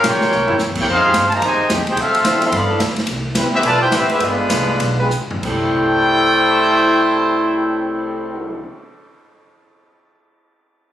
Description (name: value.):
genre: jazz, big band swing.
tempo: 184-217 BPM.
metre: 4/4.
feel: swing 61% on 8ths.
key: C major.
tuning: A4 = 441 Hz.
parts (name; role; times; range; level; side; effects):
warm trumpet section; melody; 0.0-8.6 s; Ab3 to C6; -15 LUFS; equal; none.
muted trombone section; second line; 0.0-8.6 s; C3 to G4; -24 LUFS; right 1 dB; none.
warm trombone section; sustained chords; 0.0-8.7 s; Db3 to C5; -24 LUFS; left 1 dB; none.
upright bass; bass; 0.0-8.6 s; G1 to G2; -26 LUFS; right 1 dB; none.
swinging big-band drum kit; drums; 0.0-8.0 s; crash cymbal, cymbal swell, hi-hat, kick drum, ride cymbal, snare drum, toms; -23 LUFS; equal; none.
room: moderate large studio reverb, RT60 1.1 s.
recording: recorded on a phone in the room, studio reverb.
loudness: -14 LUFS.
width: side -11 dB against mid.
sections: 0.0-5.4 A section; 5.4-8.0 B section.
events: drum fill 0.3, 5.1-5.4; slowing down 3.1-5.4.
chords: 0.3 C7b9; 0.9 Fm9; 2.0 Dm9; 2.5 G13; 3.1 Cmaj7; 4.2 G7b9; 5.4 C6.